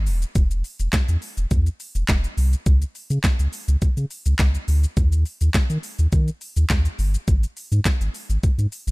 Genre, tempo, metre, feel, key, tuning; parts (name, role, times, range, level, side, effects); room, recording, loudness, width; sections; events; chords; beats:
dance-pop; 104 BPM; 4/4; straight; A4 = 440 Hz
warm sub bass; bass; 0.0-8.9 s; Eb1 to Eb3; -20 LUFS; equal; sidechain pumping
pop drum kit; drums; 0.1-8.9 s; handclaps, hi-hat, kick drum, shaker, snare drum; -21 LUFS; equal
little or no reverb; echo-heavy mix; -19 LUFS; side -25 dB against mid
0.0-8.9 A section
| 0.35 0.93 1.51 2.09 | 2.66 3.24 3.82 4.39 | 4.97 5.55 6.12 6.70 | 7.28 7.86 8.43